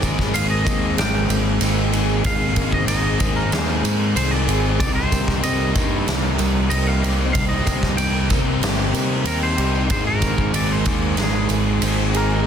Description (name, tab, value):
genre	rock, shoegaze and dream pop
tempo	94 BPM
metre	4/4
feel	straight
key	unclear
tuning	A4 = 440 Hz
part	twangy electric guitar	melody	0.0-12.5 s	Ab4 to G5	-26 LUFS	equal	analog delay
part	picked twelve-string acoustic guitar	arpeggios	0.0-12.5 s	Eb3 to Ab4	-31 LUFS	right 9 dB	analog chorus, analog delay
part	crunchy overdriven guitar	riff	0.0-12.5 s	Ab2 to Eb4	-27 LUFS	right 1 dB	none
part	electric guitar through a small old amp	riff	0.0-12.5 s	C3 to C5	-28 LUFS	right 10 dB	reverse reverb
part	raw garage guitar	riff	0.0-12.5 s	Ab2 to Ab4	-26 LUFS	left 12 dB	overdrive, wide subtle chorus
part	modern bright picked electric bass	bass	0.0-12.4 s	G1 to C3	-22 LUFS	equal	none
part	huge arena drum kit	drums	0.0-12.3 s	kick drum, ride cymbal, snare drum	-23 LUFS	equal	none
part	tambourine	percussion	0.0-12.4 s	none	-36 LUFS	right 13 dB	none
room	little or no reverb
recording	dense, heavily limited modern master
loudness	-17 LUFS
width	side -8 dB against mid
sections	0.0-12.5 A section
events	none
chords	0.0 Abadd9; 4.8 Cm7; 9.9 Abadd9